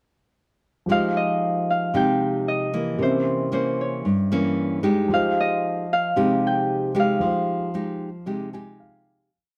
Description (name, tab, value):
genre	bossa nova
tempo	114 BPM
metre	4/4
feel	straight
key	F minor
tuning	A4 = 440 Hz
part	Celtic harp	melody	0.9-9.0 s	C5 to G5	-26 LUFS	equal	none
part	nylon-string guitar	accompaniment	0.9-9.3 s	G2 to G4	-26 LUFS	equal	none
part	warm concert grand piano	accompaniment	0.9-9.3 s	F3 to Ab5	-33 LUFS	equal	none
room	moderate studio reverb, RT60 0.6 s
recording	none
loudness	-23 LUFS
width	mono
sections	0.9-9.3 A section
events	fade-out 7.2-9.3; grand piano fill 8.3-9.3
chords	0.9 Fm9; 3.0 C7b9; 5.1 Fm9